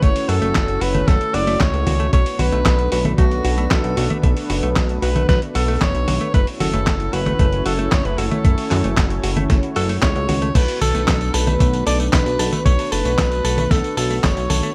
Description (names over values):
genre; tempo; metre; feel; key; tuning
italo disco; 114 BPM; 4/4; straight; B minor; A4 = 441 Hz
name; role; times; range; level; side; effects
bright alto saxophone; melody; 0.0-14.7 s; F#4 to D5; -26 LUFS; equal; delay
warm analog pad; sustained chords; 0.0-14.7 s; A3 to C#5; -28 LUFS; equal; chorus
direct-recorded clean electric guitar; arpeggios; 0.0-14.7 s; A3 to A4; -30 LUFS; equal; delay
chorused synth bass; bass; 0.0-14.6 s; F#1 to F#2; -24 LUFS; equal; tube saturation
dusty soul sampler-style drum kit; drums; 0.0-14.7 s; congas, crash cymbal, handclaps, hi-hat, snare drum, tambourine; -26 LUFS; equal; none
electronic kick drum; drums; 0.0-14.3 s; none; -19 LUFS; equal; none
room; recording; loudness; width
little or no reverb; vinyl crackle; -18 LUFS; mono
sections
0.0-14.7 A section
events
none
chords
0.0 F#m7; 2.1 Bm7; 6.3 F#m7; 10.6 Bm7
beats
| 0.03 0.55 1.08 1.60 | 2.13 2.66 3.18 3.71 | 4.24 4.76 5.29 5.81 | 6.34 6.87 7.39 7.92 | 8.45 8.97 9.50 10.03 | 10.55 11.08 11.60 12.13 | 12.66 13.18 13.71 14.23